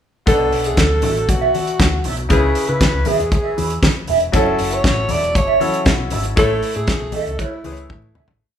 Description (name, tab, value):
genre	disco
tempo	118 BPM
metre	4/4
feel	straight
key	B dorian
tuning	A4 = 439 Hz
part	breathy alto saxophone	melody	0.3-8.2 s	E4 to D5	-20 LUFS	equal	none
part	bright grand piano	accompaniment	0.3-8.4 s	B2 to C#5	-24 LUFS	left 4 dB	none
part	mellow electric guitar	accompaniment	0.3-8.3 s	E4 to E5	-22 LUFS	right 5 dB	wah, phaser
part	fingered electric bass with an envelope filter	bass	0.3-8.4 s	E1 to C#3	-23 LUFS	equal	none
part	damped 70s drum kit	drums	0.3-8.4 s	hi-hat, kick drum, snare drum, toms	-18 LUFS	equal	none
part	congas	percussion	0.3-8.3 s	none	-29 LUFS	left 4 dB	none
room	moderate large studio reverb, RT60 0.9 s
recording	band playing live in one room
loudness	-15 LUFS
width	side -9 dB against mid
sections	0.3-8.4 verse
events	fade-out 6.4-8.4; drum fill 7.9-8.4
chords	0.3 Bm7; 2.3 C#m7; 4.3 F#m7; 6.4 Amaj7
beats	| 0.27 0.78 1.29 1.80 | 2.31 2.81 3.32 3.83 | 4.34 4.85 5.36 5.87 | 6.38 6.88 7.39 7.90